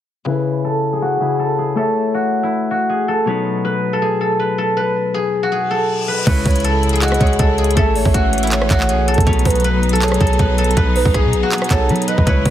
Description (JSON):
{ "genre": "hip hop, trap", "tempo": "160 BPM", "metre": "4/4", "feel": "half-time", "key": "unclear", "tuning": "A4 = 440 Hz", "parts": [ { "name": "Celtic harp", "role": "accompaniment", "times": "0.2-12.5 s", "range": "B2 to E5", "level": "-22 LUFS", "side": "left 4 dB", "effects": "low-pass filter" }, { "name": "guzheng", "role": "melody", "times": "0.3-12.5 s", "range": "E4 to C#5", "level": "-18 LUFS", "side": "equal", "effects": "low-pass filter" }, { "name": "reverse cymbal", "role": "sound effects", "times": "5.7-6.3 s", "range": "none", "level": "-26 LUFS", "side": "left 6 dB", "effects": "none" }, { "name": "clear symphonic string section", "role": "sustained chords", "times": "6.3-12.5 s", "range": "C#3 to E4", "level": "-24 LUFS", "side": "left 2 dB", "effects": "none" }, { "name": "clean 808-style bass", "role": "bass", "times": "6.3-12.5 s", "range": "A1 to F#3", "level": "-18 LUFS", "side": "right 1 dB", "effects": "none" }, { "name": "trap drum kit", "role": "drums", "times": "6.3-12.5 s", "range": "crash cymbal, handclaps, hi-hat, kick drum, rim click", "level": "-18 LUFS", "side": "right 1 dB", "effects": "none" }, { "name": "gliding portamento lead", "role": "second line", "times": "6.5-12.5 s", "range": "B4 to D#5", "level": "-25 LUFS", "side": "right 5 dB", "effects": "chorus, tape echo" } ], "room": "light reverb, digital ambience", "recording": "heavily compressed radio sound", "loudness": "-14 LUFS", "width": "side -11 dB against mid", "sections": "0.3-6.3 A section; 6.3-12.5 B section", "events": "filter sweep 0.3-6.3; reverse cymbal 5.7-6.3", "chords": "0.3 C#m; 1.8 A; 3.3 B; 6.3 C#m; 7.8 A; 9.3 B" }